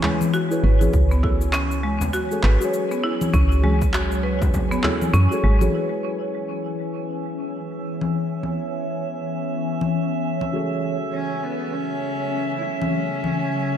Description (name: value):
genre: organic downtempo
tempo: 100 BPM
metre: 4/4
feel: swing 60% on 16ths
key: C# minor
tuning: A4 = 442 Hz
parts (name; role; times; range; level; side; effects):
- muted felt-like synth keys; accompaniment; 0.0-13.8 s; C#4 to C#5; -29 LUFS; left 1 dB; chorus, sidechain pumping, ping-pong delay
- ethereal airy pad; sustained chords; 0.0-13.8 s; C#3 to G#5; -27 LUFS; equal; ensemble chorus, built-in reverb, phaser, sidechain pumping
- buzzing marimba with hard mallets; arpeggios; 0.0-5.6 s; G#3 to B4; -26 LUFS; equal; ping-pong delay
- electronic handclaps, congas and cabasa; drums; 0.0-13.4 s; none; -27 LUFS; left 3 dB; overdrive, low-pass filter on perc, small room ambience, low-pass filter on snare
- frame drum; percussion; 0.0-5.0 s; none; -27 LUFS; left 1 dB; none
- woody FM bass; bass; 0.6-5.7 s; G#1 to F#2; -18 LUFS; equal; sidechain pumping
- electronic kick drum; drums; 0.9-4.7 s; none; -23 LUFS; equal; overdrive, small room ambience
- drifting glass-harmonics texture; texture; 7.0-13.8 s; E5; -32 LUFS; right 4 dB; chorus, built-in reverb
- warm cello; melody; 11.1-13.8 s; B3 to E4; -27 LUFS; left 1 dB; diffuse ambient delay
room: moderate plate reverb, RT60 2.1 s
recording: dreamy mix soaked in reverb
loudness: -20 LUFS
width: side -10 dB against mid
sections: 0.0-5.7 A section; 5.7-13.8 B section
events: none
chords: 0.0 C#m7; 0.9 F#madd9; 5.7 C#m7; 10.5 F#madd9/C#